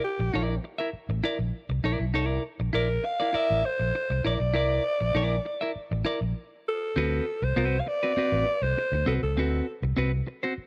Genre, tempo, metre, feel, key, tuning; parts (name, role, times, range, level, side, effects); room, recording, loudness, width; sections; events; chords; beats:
funk; 100 BPM; 4/4; straight; D mixolydian; A4 = 440 Hz
breathy alto saxophone; melody; 0.0-9.8 s; G4 to F5; -30 LUFS; equal
clean electric guitar; accompaniment; 0.0-10.5 s; C4 to E5; -32 LUFS; equal
fingered electric bass; bass; 0.2-10.6 s; A1 to D2; -30 LUFS; equal
light reverb, small room ambience; -27 LUFS; mono
0.0-7.0 A section; 7.0-10.7 B section
stop 6.4-7.0
0.0 C9 (rootless); 7.0 D13
0.34 0.94 1.54 | 2.14 2.74 3.35 3.95 | 4.55 5.15 5.75 6.36 | 6.96 7.56 8.16 8.77 | 9.37 9.97 10.57